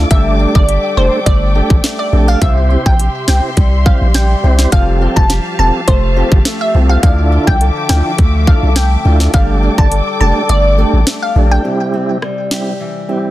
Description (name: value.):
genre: dancehall.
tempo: 104 BPM.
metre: 4/4.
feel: straight.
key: unclear.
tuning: A4 = 440 Hz.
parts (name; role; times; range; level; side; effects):
tonewheel organ; accompaniment; 0.0-13.3 s; G3 to C5; -19 LUFS; right 2 dB; fast rotary speaker.
muted studio string section; sustained chords; 0.0-11.6 s; F3 to D6; -23 LUFS; left 1 dB; sidechain pumping.
fingerpicked acoustic archtop guitar; arpeggios; 0.0-13.3 s; C3 to A4; -22 LUFS; left 2 dB; none.
punchy sub bass; bass; 0.0-11.6 s; E1 to D2; -12 LUFS; equal; none.
glassy wavetable pluck; melody; 0.1-11.6 s; C5 to A5; -18 LUFS; equal; chorus, digital delay.
island pop drum kit; drums; 0.1-12.7 s; hi-hat, kick drum, rim click, snare drum; -12 LUFS; equal; overdrive.
room: little or no reverb.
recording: dense, heavily limited modern master.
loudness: -10 LUFS.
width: side -15 dB against mid.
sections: 0.0-11.6 A section; 11.6-13.3 B section.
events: kick muted 10.5-11.6.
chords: 0.1 Gsus2; 2.4 C; 4.7 Fadd9; 7.0 Dmadd9; 9.3 Gsus2; 11.6 C.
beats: | 0.11 0.69 1.26 1.84 | 2.42 2.99 3.57 4.15 | 4.72 5.30 5.88 6.46 | 7.03 7.61 8.19 8.76 | 9.34 9.92 10.49 11.07 | 11.65 12.22 12.80.